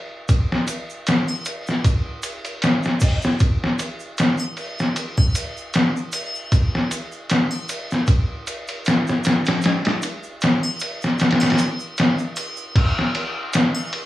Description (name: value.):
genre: trip hop.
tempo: 77 BPM.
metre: 4/4.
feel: swing 55% on 16ths.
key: none.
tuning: none.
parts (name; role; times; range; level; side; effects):
trip hop sampler-style drum kit; drums; 0.3-14.1 s; crash cymbal, hi-hat, kick drum, ride cymbal, snare drum; -19 LUFS; equal; cassette tape.
tube shaker and triangle; percussion; 0.3-13.9 s; none; -32 LUFS; right 1 dB; none.
room: moderate booth ambience, RT60 0.2 s.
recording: home recording on cassette, small room ambience.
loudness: -19 LUFS.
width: side -15 dB against mid.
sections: 0.0-12.8 A section; 12.8-14.1 B section.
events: none.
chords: none.